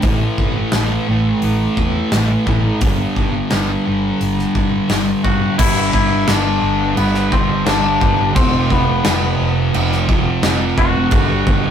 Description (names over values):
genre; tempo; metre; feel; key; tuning
rock, shoegaze and dream pop; 87 BPM; 4/4; straight; unclear; A4 = 440 Hz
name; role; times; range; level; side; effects
thick fuzz guitar; riff; 0.0-11.7 s; F2 to A3; -17 LUFS; right 1 dB; distortion
vintage muted fingered electric bass; bass; 0.0-11.7 s; F1 to G2; -22 LUFS; equal; none
gated 80s drum kit; drums; 0.0-11.6 s; crash cymbal, hi-hat, kick drum, snare drum; -18 LUFS; equal; none
twangy electric guitar; melody; 5.2-11.7 s; B3 to F#4; -20 LUFS; left 3 dB; none
room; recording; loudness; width
wet studio ambience, RT60 0.5 s; rough rehearsal-room recording, warm saturation; -14 LUFS; side -8 dB against mid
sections
0.0-5.6 A section; 5.6-11.7 A section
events
none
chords
0.0 A5; 2.8 G5; 8.4 F5; 11.1 G5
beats
| 0.04 0.74 1.43 2.13 | 2.82 3.51 4.21 4.90 | 5.59 6.28 6.97 7.67 | 8.36 9.05 9.74 10.43 | 11.12